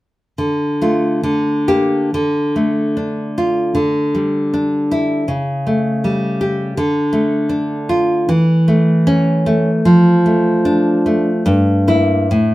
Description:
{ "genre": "romantic piece for solo classical guitar", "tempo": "63-83 BPM", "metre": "2/4", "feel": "rubato", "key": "D minor", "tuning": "A4 = 440 Hz", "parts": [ { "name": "nylon-string guitar", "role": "solo", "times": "0.4-12.5 s", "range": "G2 to G4", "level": "-13 LUFS", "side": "equal", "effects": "none" } ], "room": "moderate studio reverb, RT60 0.8 s", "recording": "band playing live in one room", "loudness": "-13 LUFS", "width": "side -17 dB against mid", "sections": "0.4-2.1 A section; 2.1-12.5 B section", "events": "none", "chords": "0.4 Dm; 1.2 Gm/D; 2.1 Dm; 3.8 Dsus24; 5.3 A7/C#; 6.8 Dm; 8.3 A/E; 9.9 Dm/F; 11.5 Edim/G" }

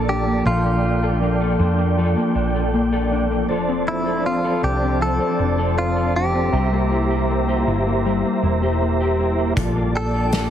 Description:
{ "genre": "dream pop", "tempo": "79 BPM", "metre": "4/4", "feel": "straight", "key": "F major", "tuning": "A4 = 437 Hz", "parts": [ { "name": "direct-recorded clean electric guitar", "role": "melody", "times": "0.0-10.5 s", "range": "E4 to A4", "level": "-25 LUFS", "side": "equal", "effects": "tape echo" }, { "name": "mellow tonewheel organ", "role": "sustained chords", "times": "0.0-10.5 s", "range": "F3 to Bb5", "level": "-23 LUFS", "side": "right 2 dB", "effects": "chorus vibrato, wide subtle chorus" }, { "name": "mellow electric guitar", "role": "arpeggios", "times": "0.0-10.5 s", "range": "F3 to A4", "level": "-22 LUFS", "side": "left 3 dB", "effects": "ensemble chorus, tape echo" }, { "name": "hollow-body short-scale fingered electric bass", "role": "bass", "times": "0.0-10.5 s", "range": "E1 to F2", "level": "-22 LUFS", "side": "equal", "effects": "none" }, { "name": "loose indie drum kit", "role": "drums", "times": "9.6-10.5 s", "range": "hi-hat, kick drum, snare drum", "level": "-23 LUFS", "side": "equal", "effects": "none" }, { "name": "shimmering bell with halo", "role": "texture", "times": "10.0-10.5 s", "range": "G5", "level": "-35 LUFS", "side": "right 4 dB", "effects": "ensemble chorus" } ], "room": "moderate huge ambient reverb, RT60 8.6 s", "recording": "heavily compressed radio sound, multiband compression", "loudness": "-17 LUFS", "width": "side -10 dB against mid", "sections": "0.0-10.5 A section", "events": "none", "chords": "0.0 Bbmaj7; 3.5 F6; 6.5 C7; 9.6 Bbmaj7" }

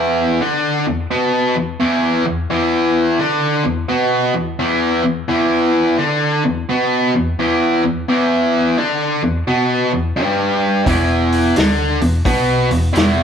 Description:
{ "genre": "blues rock power trio and southern rock", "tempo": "86 BPM", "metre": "4/4", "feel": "swing 65% on 8ths", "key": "unclear", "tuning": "A4 = 445 Hz", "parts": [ { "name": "overdriven electric guitar", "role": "riff", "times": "0.0-13.2 s", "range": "E2 to D4", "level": "-14 LUFS", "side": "equal", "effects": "spring reverb" }, { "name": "hollow-body short-scale picked electric bass", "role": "bass", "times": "10.9-13.2 s", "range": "E1 to D2", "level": "-20 LUFS", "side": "equal", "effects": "none" }, { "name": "vintage drum kit", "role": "drums", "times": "10.9-13.2 s", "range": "hi-hat, kick drum, snare drum", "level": "-18 LUFS", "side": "equal", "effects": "none" } ], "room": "moderate studio reverb, RT60 0.6 s", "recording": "band playing live in one room", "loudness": "-14 LUFS", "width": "side -7 dB against mid", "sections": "0.0-13.2 A section", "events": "none", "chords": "0.0 E5" }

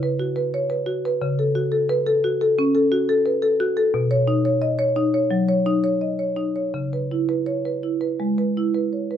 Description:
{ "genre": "classical, contemporary piece for solo marimba", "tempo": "81-89 BPM", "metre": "4/4", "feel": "rubato", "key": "C# minor", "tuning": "A4 = 440 Hz", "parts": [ { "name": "marimba with medium mallets", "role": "solo", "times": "0.0-9.2 s", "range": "B2 to D#5", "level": "-19 LUFS", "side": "equal", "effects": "none" } ], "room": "light reverb", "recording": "close, detailed microphones", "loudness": "-19 LUFS", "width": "side -9 dB against mid", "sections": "0.0-9.2 A section", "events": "none", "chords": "0.0 C#7sus4; 1.2 F#m/C#; 3.9 Badd9; 6.7 C#m7" }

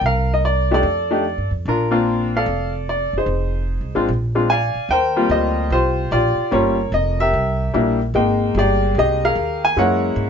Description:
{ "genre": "jazz piano trio", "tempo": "148 BPM", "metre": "4/4", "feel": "swing 65% on 8ths", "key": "Bb major, Eb major from 4.9 s", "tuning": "A4 = 436 Hz", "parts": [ { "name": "clear upright piano", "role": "melody", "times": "0.0-10.3 s", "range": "G3 to Ab5", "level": "-18 LUFS", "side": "left 1 dB", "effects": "none" }, { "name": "upright bass", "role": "bass", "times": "0.0-10.3 s", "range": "F1 to Ab2", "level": "-22 LUFS", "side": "right 1 dB", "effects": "none" } ], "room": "moderate small room reverb, RT60 0.5 s", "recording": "nothing above 7.7 kHz", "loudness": "-16 LUFS", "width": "side -7 dB against mid", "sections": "0.0-4.9 A section; 4.9-10.3 B section", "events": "none", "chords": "0.0 Cm7; 0.8 F69; 1.7 Bbmaj9; 3.3 Fm7; 4.1 Bb7; 4.9 Eb69; 6.5 Gm7b5; 7.3 C7; 8.1 Fm11; 9.8 Gb9" }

